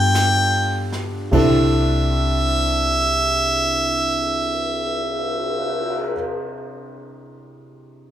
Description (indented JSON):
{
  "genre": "jazz ballad",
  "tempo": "49 BPM",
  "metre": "4/4",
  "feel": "swing 67% on 8ths",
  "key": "C major",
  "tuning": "A4 = 442 Hz",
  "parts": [
    { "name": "clear harmonica", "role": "melody", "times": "0.0-6.1 s", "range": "E5 to G5", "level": "-20 LUFS", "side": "right 1 dB", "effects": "none" },
    { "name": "warm concert grand piano", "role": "accompaniment", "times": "0.0-8.1 s", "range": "C3 to A4", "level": "-24 LUFS", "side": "equal", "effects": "none" },
    { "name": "upright bass", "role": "bass", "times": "0.0-6.1 s", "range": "C2 to G2", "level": "-23 LUFS", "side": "left 1 dB", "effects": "none" },
    { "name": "jazz brush drum kit", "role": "drums", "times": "0.1-6.0 s", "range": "cymbal swell, hi-hat, kick drum, ride cymbal, snare drum", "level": "-27 LUFS", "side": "equal", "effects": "none" }
  ],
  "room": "moderate large studio reverb, RT60 0.9 s",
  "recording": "band playing live in one room",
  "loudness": "-17 LUFS",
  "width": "side -11 dB against mid",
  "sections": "0.0-1.3 A section; 1.3-6.2 B section",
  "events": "slowing down 0.0-1.3",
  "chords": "0.0 G7; 1.3 C69",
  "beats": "0.14 | 1.32 2.56 3.78 5.01"
}